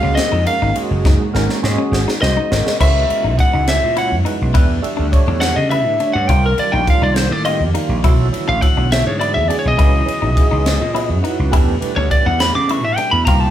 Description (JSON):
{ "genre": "electric jazz fusion", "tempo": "69 BPM (dotted quarters)", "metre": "6/8", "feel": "straight", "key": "unclear", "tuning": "A4 = 438 Hz", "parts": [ { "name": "lightly driven lead guitar", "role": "melody", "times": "0.0-13.5 s", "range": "Bb4 to D6", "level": "-18 LUFS", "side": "left 1 dB", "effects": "none" }, { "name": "barky tine electric piano", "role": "accompaniment", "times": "0.0-13.5 s", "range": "E3 to C#5", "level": "-23 LUFS", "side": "right 6 dB", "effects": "fast tremolo, phaser" }, { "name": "analog string pad", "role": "sustained chords", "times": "0.0-13.5 s", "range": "B2 to F#5", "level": "-28 LUFS", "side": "equal", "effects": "ensemble chorus" }, { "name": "clean electric guitar", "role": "stabs", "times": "0.0-13.5 s", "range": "Db4 to F4", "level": "-26 LUFS", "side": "left 6 dB", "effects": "none" }, { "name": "vintage slap bass", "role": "bass", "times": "0.0-13.5 s", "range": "Gb1 to C#3", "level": "-19 LUFS", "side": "equal", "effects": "none" }, { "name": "crisp fusion drum kit", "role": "drums", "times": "0.2-13.4 s", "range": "crash cymbal, kick drum, ride cymbal, snare drum", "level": "-18 LUFS", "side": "equal", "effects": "none" } ], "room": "moderate large studio reverb, RT60 0.9 s", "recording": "band playing live in one room", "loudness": "-13 LUFS", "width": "side -11 dB against mid", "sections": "0.0-2.8 A section; 2.8-13.5 A section", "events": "lead electric guitar solo 0.0-13.5; drum fill 1.1-2.8", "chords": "0.0 Ab9sus4; 2.8 C#m11; 4.5 Em11; 6.3 Cm11; 8.0 Bm11; 9.8 C#m11; 11.5 Em11" }